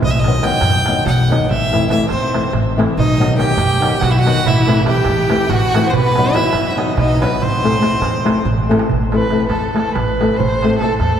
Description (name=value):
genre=balkan folk, Balkan wedding band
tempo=284 BPM (eighths)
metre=7/8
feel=straight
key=A dorian sharp4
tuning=A4 = 440 Hz
part: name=clear fiddle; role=melody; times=0.0-8.5 s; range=B4 to G5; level=-20 LUFS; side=equal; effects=none
part: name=upright bass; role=bass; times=0.0-11.2 s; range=A1 to F#2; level=-18 LUFS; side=equal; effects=none
part: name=darbuka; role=percussion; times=0.0-11.1 s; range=none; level=-22 LUFS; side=right 5 dB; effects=none
part: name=flamenco guitar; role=accompaniment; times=0.3-11.0 s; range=D#3 to A4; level=-18 LUFS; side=left 2 dB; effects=none
part: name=warm violin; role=second line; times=2.1-11.2 s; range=B3 to C5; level=-20 LUFS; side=right 2 dB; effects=none
room=wet cathedral reverb, RT60 6.5 s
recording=recorded in a church or concert hall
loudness=-13 LUFS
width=side -9 dB against mid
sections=0.0-8.9 A section; 8.9-11.2 B section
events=drum fill 8.5-8.9; violin solo 8.9-11.2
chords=0.0 B; 1.5 Am; 3.0 B; 4.5 Am; 5.9 B; 7.4 Am